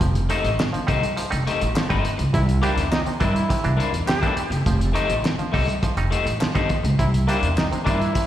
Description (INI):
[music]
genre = funk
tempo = 103 BPM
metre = 4/4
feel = straight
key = unclear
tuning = A4 = 440 Hz
[part]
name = muted clav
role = stabs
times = 0.0-8.3 s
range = C3 to Eb4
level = -30 LUFS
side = right 5 dB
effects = auto-wah, slapback echo
[part]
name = upright bass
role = bass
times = 0.0-8.0 s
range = F1 to G2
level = -23 LUFS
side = equal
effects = none
[part]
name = cloth-damped thuddy drum kit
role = drums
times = 0.0-8.3 s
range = hi-hat, kick drum, snare drum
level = -25 LUFS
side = equal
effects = slapback echo
[part]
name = electric guitar at the edge of break-up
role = accompaniment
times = 0.3-8.2 s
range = A3 to C5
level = -26 LUFS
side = left 6 dB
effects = spring reverb, slapback echo
[part]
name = group handclap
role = percussion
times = 0.6-7.7 s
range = none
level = -38 LUFS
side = left 3 dB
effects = none
[part]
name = brilliant trombone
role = second line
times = 2.3-8.3 s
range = Eb4 to G4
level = -28 LUFS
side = right 2 dB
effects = slapback echo, tape echo
[sound]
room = small room reverb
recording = live gig heard through the venue's PA, recital hall reverb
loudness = -19 LUFS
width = side -12 dB against mid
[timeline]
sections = 0.0-8.3 A section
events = none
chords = 0.0 F9; 2.3 C9; 4.7 F9; 7.0 C9